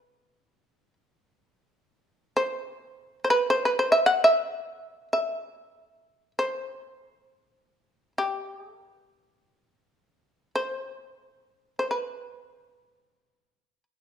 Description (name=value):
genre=japanese traditional, Japanese chamber music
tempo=free time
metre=none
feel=none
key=unclear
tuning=A4 = 440 Hz
part: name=shamisen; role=solo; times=0.0-13.8 s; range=B4 to F#5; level=-22 LUFS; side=equal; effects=none
room=moderate recital hall reverb, RT60 1.5 s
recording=minimal, uncompressed stereo recording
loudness=-24 LUFS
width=side -8 dB against mid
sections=0.0-14.0 A section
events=none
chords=none